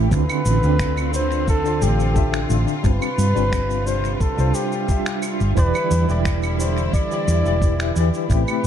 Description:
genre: sunset chillout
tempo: 88 BPM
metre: 4/4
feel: straight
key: unclear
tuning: A4 = 444 Hz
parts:
  - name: tine electric piano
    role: accompaniment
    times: 0.0-8.7 s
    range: D3 to E5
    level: -24 LUFS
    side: moving between left 7 dB and right 7 dB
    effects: overdrive, fast stereo tremolo, auto-pan, tape echo
  - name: rich symphonic string section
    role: sustained chords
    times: 0.0-8.7 s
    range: C3 to G4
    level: -29 LUFS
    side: left 1 dB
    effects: none
  - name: hollow-body short-scale fingered electric bass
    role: bass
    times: 0.0-8.7 s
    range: E1 to G2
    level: -20 LUFS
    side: equal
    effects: none
  - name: downlifter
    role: sound effects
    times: 0.0-2.8 s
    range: none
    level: barely audible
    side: none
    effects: none
  - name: mellow flugelhorn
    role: melody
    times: 0.1-8.7 s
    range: G4 to D5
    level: -26 LUFS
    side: left 1 dB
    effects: tape echo
  - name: electronic cabasa, claves and finger snaps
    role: drums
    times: 0.1-8.7 s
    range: none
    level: -31 LUFS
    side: right 2 dB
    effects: tape echo
  - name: electronic kick drum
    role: drums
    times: 0.1-8.4 s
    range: none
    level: -20 LUFS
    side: equal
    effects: none
room: light reverb, digital ambience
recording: echo-heavy mix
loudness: -17 LUFS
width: side -9 dB against mid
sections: 0.0-8.7 A section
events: none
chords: 0.1 Dm7; 2.8 G7sus4; 5.6 Em7

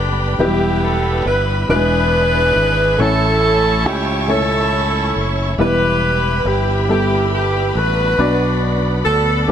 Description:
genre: slow gospel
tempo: 46 BPM (dotted quarters)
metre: 6/8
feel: straight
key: unclear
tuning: A4 = 440 Hz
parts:
  - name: clear alto saxophone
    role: melody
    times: 0.0-9.5 s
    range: G4 to B4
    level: -20 LUFS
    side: right 5 dB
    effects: none
  - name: clear saxophone section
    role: melody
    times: 0.0-9.5 s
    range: B3 to B4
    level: -20 LUFS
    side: left 4 dB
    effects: none
  - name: warm upright piano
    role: accompaniment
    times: 0.0-9.5 s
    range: A2 to D5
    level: -20 LUFS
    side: left 1 dB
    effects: none
  - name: bright tonewheel organ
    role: sustained chords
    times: 0.0-9.5 s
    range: F#3 to C#5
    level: -28 LUFS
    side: right 3 dB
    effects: slow rotary speaker, overdrive, chorus vibrato
  - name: warm studio string section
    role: sustained chords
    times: 0.0-9.5 s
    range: B4 to C#6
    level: -27 LUFS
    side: left 1 dB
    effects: none
  - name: fingered electric bass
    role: bass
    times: 0.0-9.5 s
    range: E1 to D2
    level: -19 LUFS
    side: equal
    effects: none
room: light reverb, studio ambience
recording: faint mains hum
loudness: -14 LUFS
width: side -9 dB against mid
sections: 0.0-9.5 A section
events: none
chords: 0.4 Em; 1.7 E7; 3.0 A; 5.6 Em; 8.2 Bm

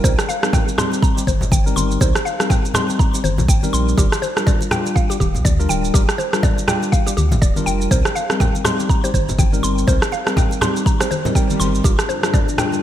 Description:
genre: afro house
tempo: 122 BPM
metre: 4/4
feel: swing 58% on 16ths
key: unclear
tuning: A4 = 440 Hz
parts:
  - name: mallet-like synth pluck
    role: arpeggios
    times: 0.0-12.7 s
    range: G4 to C6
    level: -25 LUFS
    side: equal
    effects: chorus, cassette tape, sidechain pumping, digital delay
  - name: tine electric piano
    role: stabs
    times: 0.0-12.8 s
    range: G3 to Bb4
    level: -24 LUFS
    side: left 2 dB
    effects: wide subtle chorus, sidechain pumping, digital delay
  - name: warm sub bass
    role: bass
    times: 0.0-12.0 s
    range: D1 to D2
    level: -21 LUFS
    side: equal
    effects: sidechain pumping
  - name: electronic kick drum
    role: drums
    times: 0.0-12.5 s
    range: none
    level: -17 LUFS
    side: equal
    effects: none
  - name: electronic shaker and rim click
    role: drums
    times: 0.0-12.8 s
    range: none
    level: -22 LUFS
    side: right 2 dB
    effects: gated reverb
  - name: congas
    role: percussion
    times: 0.0-12.8 s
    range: none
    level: -25 LUFS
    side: left 2 dB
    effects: none
  - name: swell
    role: sound effects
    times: 11.2-11.8 s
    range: none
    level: -30 LUFS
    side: right 3 dB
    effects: none
  - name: dark analog pad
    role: sustained chords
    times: 11.8-12.8 s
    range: G3 to Bb4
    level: -26 LUFS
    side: left 2 dB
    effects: lush chorus, sidechain pumping
room: light reverb, digital ambience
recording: bright 1980s-style digital production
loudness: -15 LUFS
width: side -11 dB against mid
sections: 0.0-12.8 A section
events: swell 11.2-11.8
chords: 0.0 Cm7; 4.0 Gm7; 7.9 Cm7; 11.8 Gm7

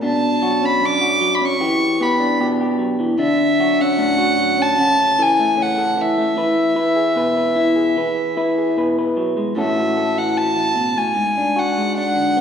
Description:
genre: acoustic folk-pop ballad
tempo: 75 BPM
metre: 4/4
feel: straight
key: A major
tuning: A4 = 439 Hz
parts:
  - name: dark violin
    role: melody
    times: 0.0-12.4 s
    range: E5 to D6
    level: -18 LUFS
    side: equal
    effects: none
  - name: electric guitar through a small old amp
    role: accompaniment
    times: 0.0-12.4 s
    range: F#2 to B4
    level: -18 LUFS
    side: left 1 dB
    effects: none
room: wet recital hall reverb, RT60 1.5 s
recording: recorded in a church or concert hall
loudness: -15 LUFS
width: side -7 dB against mid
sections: 0.0-9.6 A section; 9.6-12.4 A section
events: none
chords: 0.0 Bmadd9; 1.6 Em7; 3.2 Dmaj7; 4.8 A/C#; 6.4 E; 9.6 A6; 11.2 G#7(b5, no3)

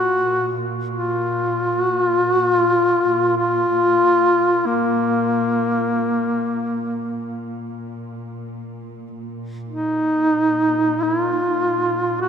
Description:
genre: caucasian folk, Caucasian lament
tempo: free time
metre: none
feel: none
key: unclear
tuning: A4 = 440 Hz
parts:
  - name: mellow duduk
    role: melody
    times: 0.0-12.3 s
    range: Bb3 to Gb4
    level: -17 LUFS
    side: left 1 dB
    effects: none
  - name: dark studio cello section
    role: drone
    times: 0.0-12.3 s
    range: Bb2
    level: -30 LUFS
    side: right 1 dB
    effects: none
room: wet cathedral reverb, RT60 5.7 s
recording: minimal, uncompressed stereo recording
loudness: -17 LUFS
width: side -7 dB against mid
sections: 0.0-9.2 A section; 9.2-12.3 A section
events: none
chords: none

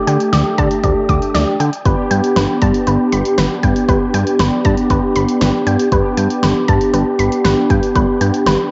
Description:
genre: synth-pop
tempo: 118 BPM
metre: 4/4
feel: straight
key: G major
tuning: A4 = 441 Hz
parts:
  - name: mellow synth brass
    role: accompaniment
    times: 0.0-8.7 s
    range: A3 to G4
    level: -18 LUFS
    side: equal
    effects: chorus, cassette tape
  - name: analog pluck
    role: arpeggios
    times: 0.0-8.7 s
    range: B4 to D6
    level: -24 LUFS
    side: equal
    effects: chorus, cassette tape, analog delay
  - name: fat analog bass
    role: bass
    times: 0.1-8.6 s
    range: G1 to D3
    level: -20 LUFS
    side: equal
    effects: none
  - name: deep house drum kit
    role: drums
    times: 0.1-8.6 s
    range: hi-hat, kick drum, snare drum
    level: -21 LUFS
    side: equal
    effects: cassette tape
room: moderate spring reverb, RT60 2.2 s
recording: home recording on cassette, nothing above 7.7 kHz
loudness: -15 LUFS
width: mono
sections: 0.0-8.7 A section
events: none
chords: 0.0 Dsus4; 1.9 Gadd9

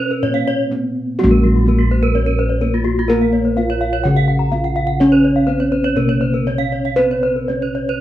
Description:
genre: Balinese gamelan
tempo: 125 BPM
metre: 4/4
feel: uneven beats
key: Bb pelog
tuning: A4 = 440 Hz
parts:
  - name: gamelan-type bronze metallophone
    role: melody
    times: 0.0-8.0 s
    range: Gb3 to Gb4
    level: -21 LUFS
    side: left 1 dB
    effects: none
  - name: gamelan-type bronze metallophone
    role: arpeggios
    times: 0.0-8.0 s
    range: F4 to Gb5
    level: -24 LUFS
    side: right 5 dB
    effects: none
  - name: gamelan-type bossed gongs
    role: bass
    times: 0.0-8.0 s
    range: Bb1 to Cb5+35c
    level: -16 LUFS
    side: equal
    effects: none
  - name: gamelan-type bronze metallophone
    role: arpeggios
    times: 0.1-7.9 s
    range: F4 to Bb5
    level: -23 LUFS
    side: left 3 dB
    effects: none
room: moderate large studio reverb, RT60 0.9 s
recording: band playing live in one room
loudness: -14 LUFS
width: side -13 dB against mid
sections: 0.0-1.2 A section; 1.2-8.0 B section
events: break 0.5-1.2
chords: none

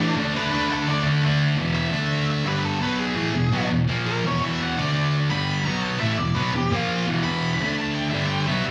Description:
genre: rock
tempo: 170 BPM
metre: 4/4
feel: straight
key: unclear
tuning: A4 = 440 Hz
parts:
  - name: octave-fuzz lead guitar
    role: melody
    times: 0.0-8.6 s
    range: D4 to B5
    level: -30 LUFS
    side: equal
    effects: distortion, slapback echo
  - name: thick fuzz guitar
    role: riff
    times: 0.0-8.7 s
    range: E2 to D4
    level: -24 LUFS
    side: equal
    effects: distortion, slapback echo
room: light reverb, digital ambience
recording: live gig heard through the venue's PA, club reverb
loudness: -23 LUFS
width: mono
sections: 0.0-1.6 A section; 1.6-8.7 B section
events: lead electric guitar solo 1.6-8.7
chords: 0.2 D5; 1.6 E5; 1.9 D5; 2.5 G5; 2.8 B5; 3.2 E; 3.9 A#5; 4.2 E5; 4.8 D5; 5.3 G5; 5.6 B5; 6.0 E5; 6.7 A#5; 7.1 E5; 7.6 D5; 8.1 G5; 8.5 E5

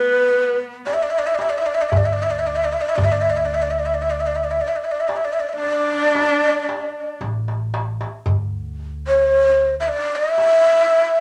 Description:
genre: Arabic maqam ensemble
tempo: 113 BPM (eighths)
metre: 10/8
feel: straight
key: unclear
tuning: A4 = 440 Hz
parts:
  - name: breathy ney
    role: melody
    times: 0.0-11.2 s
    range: B4 to E5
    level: -19 LUFS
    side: equal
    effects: none
  - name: dark cello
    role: second line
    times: 0.0-7.2 s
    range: B3 to D4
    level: -26 LUFS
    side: equal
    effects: none
  - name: darbuka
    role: percussion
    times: 0.9-10.6 s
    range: none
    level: -26 LUFS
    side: equal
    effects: none
  - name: upright bass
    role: bass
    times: 1.9-9.9 s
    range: A1 to D2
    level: -31 LUFS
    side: equal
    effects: none
room: wet studio ambience, RT60 0.4 s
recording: none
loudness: -19 LUFS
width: mono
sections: 0.0-8.3 A section; 8.3-11.2 B section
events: drum fill 7.2-8.3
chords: none

